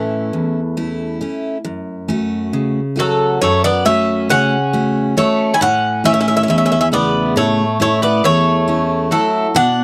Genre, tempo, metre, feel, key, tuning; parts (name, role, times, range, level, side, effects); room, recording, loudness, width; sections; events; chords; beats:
greek folk, Greek bouzouki band; 137 BPM (eighths); 9/8; straight; A major; A4 = 438 Hz
Greek bouzouki; melody; 0.0-9.8 s; A3 to G#5; -19 LUFS; equal
Greek bouzouki; second line; 0.0-9.8 s; E3 to E4; -23 LUFS; equal
picked steel-string acoustic guitar; accompaniment; 0.0-9.8 s; E2 to F#4; -20 LUFS; equal
light reverb; dry, close 1970s-style studio recording; -16 LUFS; mono
0.0-1.7 A section; 1.7-9.8 B section
0.0 A; 1.7 F#m; 5.6 A
0.33 0.77 1.21 | 1.65 2.10 2.54 2.98 3.41 3.85 4.29 4.73 5.17 | 5.61 6.05 6.48 6.92 7.36 7.80 8.23 8.67 9.11 | 9.54